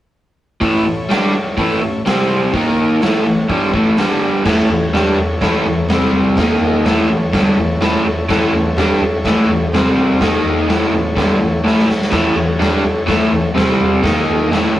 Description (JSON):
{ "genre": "garage rock duo or trio", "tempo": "125 BPM", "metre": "4/4", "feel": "straight", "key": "unclear", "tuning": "A4 = 440 Hz", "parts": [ { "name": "combo organ", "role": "sustained chords", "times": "0.6-14.8 s", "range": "C4 to D#5", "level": "-26 LUFS", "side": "left 1 dB", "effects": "none" }, { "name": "crunchy overdriven guitar", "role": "riff", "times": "0.6-14.8 s", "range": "G2 to G4", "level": "-14 LUFS", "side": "equal", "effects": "none" }, { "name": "raw garage drum kit", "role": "drums", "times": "0.6-14.8 s", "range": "crash cymbal, hi-hat, kick drum, snare drum, toms", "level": "-18 LUFS", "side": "equal", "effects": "none" } ], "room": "wet stone room reverb, RT60 1.3 s", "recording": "rough rehearsal-room recording, tube saturation", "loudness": "-12 LUFS", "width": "side -13 dB against mid", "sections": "0.6-4.5 A section; 4.5-14.8 B section", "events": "drum fill 11.6-12.1", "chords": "0.6 A; 2.1 C5; 2.5 D#5; 3.0 A; 4.0 G5; 4.5 A; 5.9 C5; 6.4 D#5; 6.9 A; 9.7 C5; 10.2 D#5; 10.7 A; 13.6 C5; 14.0 D#5" }